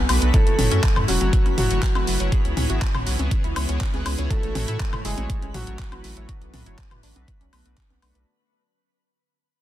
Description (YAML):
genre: progressive house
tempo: 121 BPM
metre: 4/4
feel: straight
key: unclear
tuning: A4 = 440 Hz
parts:
  - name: dark baby grand piano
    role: melody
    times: 0.0-8.2 s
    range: F#3 to A4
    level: -30 LUFS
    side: equal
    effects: sidechain pumping, ping-pong delay
  - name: evolving wavetable pad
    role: sustained chords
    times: 0.0-8.3 s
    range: C#3 to F#4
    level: -35 LUFS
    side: equal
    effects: phaser, built-in reverb, sidechain pumping
  - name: wide unison pluck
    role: arpeggios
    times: 0.0-8.2 s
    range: F#3 to G#4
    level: -33 LUFS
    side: equal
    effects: cassette tape, sidechain pumping, ping-pong delay
  - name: saturated sub bass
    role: bass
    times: 0.0-8.2 s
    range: E1 to A2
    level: -24 LUFS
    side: equal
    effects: sidechain pumping
  - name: twinkling granular texture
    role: texture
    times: 0.0-8.3 s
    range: B4 to B5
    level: -40 LUFS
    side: equal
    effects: none
  - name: chorused polysynth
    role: stabs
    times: 0.1-8.2 s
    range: A3 to E5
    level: -32 LUFS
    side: left 3 dB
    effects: sidechain pumping, ping-pong delay
  - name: pop drum kit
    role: drums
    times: 0.1-8.2 s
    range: handclaps, hi-hat, woodblock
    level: -29 LUFS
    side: left 1 dB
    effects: overdrive
  - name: electronic kick drum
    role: drums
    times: 0.3-7.9 s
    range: none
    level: -21 LUFS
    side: equal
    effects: overdrive
  - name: electronic toms and congas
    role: percussion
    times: 0.6-8.0 s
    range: none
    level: -29 LUFS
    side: left 1 dB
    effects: sidechain pumping on toms, sidechain pumping on perc
room: digital ambience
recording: dense, heavily limited modern master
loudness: -19 LUFS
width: side -13 dB against mid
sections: 0.0-8.3 A section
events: drop 0.0-8.3; fade-out 0.3-8.3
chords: 0.3 F#m7; 2.3 C#m7; 4.3 A6; 6.3 Bm7